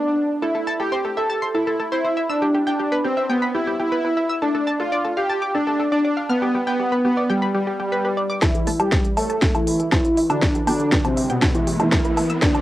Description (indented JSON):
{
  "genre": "melodic techno",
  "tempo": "120 BPM",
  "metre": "4/4",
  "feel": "straight",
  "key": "A minor",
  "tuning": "A4 = 440 Hz",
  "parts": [
    { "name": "soft supersaw", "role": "melody", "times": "0.0-12.6 s", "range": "B2 to A4", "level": "-20 LUFS", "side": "equal", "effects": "sidechain pumping, low-pass filter, cassette tape, analog delay" },
    { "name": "analog pluck", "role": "arpeggios", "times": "0.4-12.6 s", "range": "G4 to F6", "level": "-26 LUFS", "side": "equal", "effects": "chorus, sidechain pumping, cassette tape, analog delay" },
    { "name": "dark detuned synth bell", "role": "second line", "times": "8.4-12.6 s", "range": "C4 to A4", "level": "-26 LUFS", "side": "left 1 dB", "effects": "chorus, sidechain pumping, low-pass filter, cassette tape, analog delay" },
    { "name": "electronic kick drum", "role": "drums", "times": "8.4-12.5 s", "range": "none", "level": "-21 LUFS", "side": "equal", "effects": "small room ambience, cassette tape" },
    { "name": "techno drum kit", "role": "drums", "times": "8.4-12.6 s", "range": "hi-hat, snare drum, woodblock", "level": "-22 LUFS", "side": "equal", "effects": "small room ambience, cassette tape" },
    { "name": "riser", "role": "sound effects", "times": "10.1-12.6 s", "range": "none", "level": "-31 LUFS", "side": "right 1 dB", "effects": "none" },
    { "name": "filtered dub chord stab", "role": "stabs", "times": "8.7-12.4 s", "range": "E3 to A4", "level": "-27 LUFS", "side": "right 2 dB", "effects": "chorus, sidechain pumping, cassette tape, analog delay" }
  ],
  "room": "wet booth ambience, RT60 0.2 s",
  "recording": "home recording on cassette",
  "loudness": "-18 LUFS",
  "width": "side -15 dB against mid",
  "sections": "0.0-8.4 A section; 8.4-12.6 B section",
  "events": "build-up 8.4-12.6; drum fill 8.4-12.6; riser 10.1-12.6",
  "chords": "0.4 Am; 2.4 Em; 4.4 Dm; 6.4 G; 8.4 Am; 10.4 Em"
}